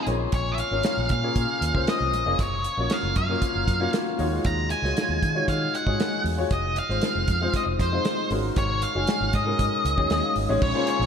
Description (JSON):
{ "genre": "polished 1980s jazz-funk pop", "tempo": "117 BPM", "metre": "4/4", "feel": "straight", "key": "unclear", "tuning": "A4 = 441 Hz", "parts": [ { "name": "octave-fuzz lead guitar", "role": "melody", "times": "0.0-11.1 s", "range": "C5 to Bb5", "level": "-27 LUFS", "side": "equal", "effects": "distortion" }, { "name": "warm grand piano", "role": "accompaniment", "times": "0.0-11.1 s", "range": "Ab3 to Ab5", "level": "-28 LUFS", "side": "left 3 dB", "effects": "lush chorus, slapback echo" }, { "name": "vintage muted fingered electric bass", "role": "bass", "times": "0.1-11.1 s", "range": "F1 to Eb3", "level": "-28 LUFS", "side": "right 1 dB", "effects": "none" }, { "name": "modern studio drum kit", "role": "drums", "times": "0.1-11.1 s", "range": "crash cymbal, hi-hat, kick drum, snare drum", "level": "-28 LUFS", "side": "right 1 dB", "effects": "none" }, { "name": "warm studio string section", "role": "sustained chords", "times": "10.6-11.1 s", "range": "Db3 to Db4", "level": "-32 LUFS", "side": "right 3 dB", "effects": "none" } ], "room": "moderate concert hall reverb, RT60 1.9 s, studio ambience", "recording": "big arena sound", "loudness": "-22 LUFS", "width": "side -7 dB against mid", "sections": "0.0-10.6 A section", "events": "grand piano fill 9.9-10.6", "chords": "0.1 Bbm7; 2.4 Gbmaj7; 4.2 Ebm11; 6.5 Fm7; 8.3 Ab9sus4" }